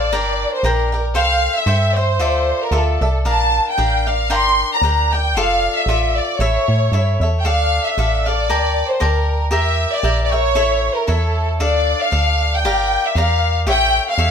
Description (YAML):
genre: mexican folk, mariachi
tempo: 115 BPM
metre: 2/4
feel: swing 55% on 8ths, rubato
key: D minor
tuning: A4 = 440 Hz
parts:
  - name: warm studio violin section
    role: melody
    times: 0.0-14.3 s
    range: A4 to C6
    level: -18 LUFS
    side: equal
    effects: none
  - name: cavaquinho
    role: accompaniment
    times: 0.0-14.3 s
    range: D4 to A5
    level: -22 LUFS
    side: left 3 dB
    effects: none
  - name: metallic FM bass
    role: bass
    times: 0.0-14.3 s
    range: F1 to A2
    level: -19 LUFS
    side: right 1 dB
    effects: none
room: moderate small room reverb, RT60 0.5 s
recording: none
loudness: -14 LUFS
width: side -7 dB against mid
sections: 0.0-14.3 A section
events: none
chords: 0.1 Gm; 1.2 C6; 2.2 Dmadd9; 3.3 Bb; 4.3 Gm; 5.3 Dmadd9/F; 6.4 A; 7.4 Dm; 8.5 Gmadd9/D; 9.5 Edim; 10.6 A; 11.6 Dm; 12.7 Gm7; 13.7 A7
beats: | 0.12 0.64 | 1.16 1.67 | 2.19 2.72 | 3.25 3.78 | 4.30 4.82 | 5.34 5.86 | 6.39 6.92 | 7.45 7.98 | 8.50 9.02 | 9.53 10.04 | 10.56 11.09 | 11.61 12.13 | 12.65 13.16 | 13.67 14.18